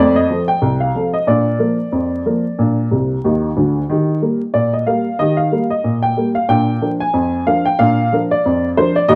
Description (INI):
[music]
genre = ragtime piano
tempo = 92 BPM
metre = 2/4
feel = swing 56% on 16ths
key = unclear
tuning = A4 = 439 Hz
[part]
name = warm upright piano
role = solo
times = 0.0-9.2 s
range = C2 to Ab5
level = -16 LUFS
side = equal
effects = none
[sound]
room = light reverb, small room ambience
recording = dry, close 1970s-style studio recording, vinyl crackle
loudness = -17 LUFS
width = mono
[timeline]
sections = 0.0-9.2 A section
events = upright piano fill 2.9-3.9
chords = 0.0 F; 1.3 Bb; 3.9 Eb; 6.5 Bb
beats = 0.62 | 1.27 1.93 | 2.58 3.23 | 3.89 4.54 | 5.19 5.84 | 6.49 7.14 | 7.79 8.44 | 9.09